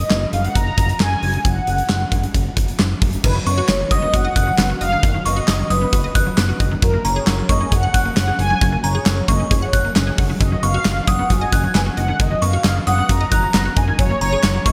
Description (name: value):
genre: synth-pop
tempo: 134 BPM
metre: 4/4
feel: straight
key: unclear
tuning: A4 = 440 Hz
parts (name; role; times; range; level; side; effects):
- mellow synth brass; melody; 0.0-14.7 s; A#4 to A#5; -25 LUFS; equal; chorus, shimmer reverb
- fat analog bass; bass; 0.0-14.7 s; F#1; -23 LUFS; equal; none
- huge arena drum kit; drums; 0.1-14.7 s; crash cymbal, handclaps, hi-hat, kick drum, snare drum; -21 LUFS; equal; none
- resonant blip pluck; arpeggios; 3.2-14.7 s; D#3 to F#5; -28 LUFS; equal; chorus, shimmer reverb, digital delay
- glassy synth bell; second line; 3.5-14.7 s; A#5 to F#6; -27 LUFS; equal; chorus, shimmer reverb, digital delay
room: moderate lush hall reverb, RT60 1.9 s, studio ambience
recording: bright 1980s-style digital production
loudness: -18 LUFS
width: mono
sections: 0.0-3.2 A section; 3.2-14.7 B section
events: none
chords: 0.0 N.C.; 3.2 B/F#; 6.8 F#add9; 10.4 B/F#; 14.0 F#